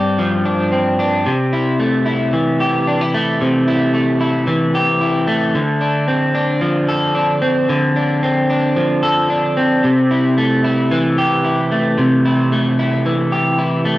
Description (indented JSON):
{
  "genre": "indie pop",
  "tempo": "112 BPM",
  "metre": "4/4",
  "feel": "straight",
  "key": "C major",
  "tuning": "A4 = 437 Hz",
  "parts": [
    { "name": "electric guitar at the edge of break-up", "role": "solo", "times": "0.0-14.0 s", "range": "G2 to A4", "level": "-14 LUFS", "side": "equal", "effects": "lush chorus, warbly pitch drift" }
  ],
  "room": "moderate spring reverb, RT60 1.4 s",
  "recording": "worn, warbling old tape, cassette tape, warbly pitch drift",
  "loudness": "-14 LUFS",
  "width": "side -16 dB against mid",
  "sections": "0.0-1.3 A section; 1.3-14.0 B section",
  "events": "none",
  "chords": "0.0 G7sus4; 1.3 C6; 5.5 Dm7; 9.8 C6"
}